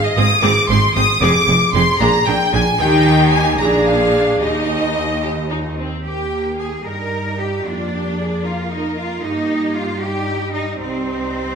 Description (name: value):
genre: quick classical-period movement for string orchestra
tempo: 76 BPM (dotted quarters)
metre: 6/8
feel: straight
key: Eb major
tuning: A4 = 440 Hz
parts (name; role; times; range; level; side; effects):
- rich symphonic violin section; melody; 0.0-11.6 s; C5 to Eb6; -23 LUFS; left 1 dB; none
- warm symphonic violin section; second line; 0.0-11.6 s; C5 to Eb6; -21 LUFS; left 2 dB; none
- rich symphonic viola section; accompaniment; 0.2-11.6 s; G3 to Bb4; -20 LUFS; equal; none
- bright symphonic cello section; bass; 0.2-11.6 s; Eb2 to Bb4; -22 LUFS; right 2 dB; none
- rich symphonic double bass section; bass; 0.2-11.6 s; F1 to G2; -22 LUFS; right 2 dB; none
room: wet recital hall reverb, RT60 1.5 s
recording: minimal, uncompressed stereo recording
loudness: -15 LUFS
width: side -6 dB against mid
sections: 0.0-6.1 A section; 6.1-11.6 A section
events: none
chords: 0.0 Ab; 1.2 Fm; 2.0 Bb7; 2.8 Eb; 3.6 Bb7; 4.4 Eb; 7.7 Bb7/F; 9.2 Eb/G; 10.8 Cm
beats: 0.43 | 1.22 2.00 | 2.79 3.59 | 4.41 5.23 | 6.05 6.86 | 7.66 8.45 | 9.23 10.02 | 10.80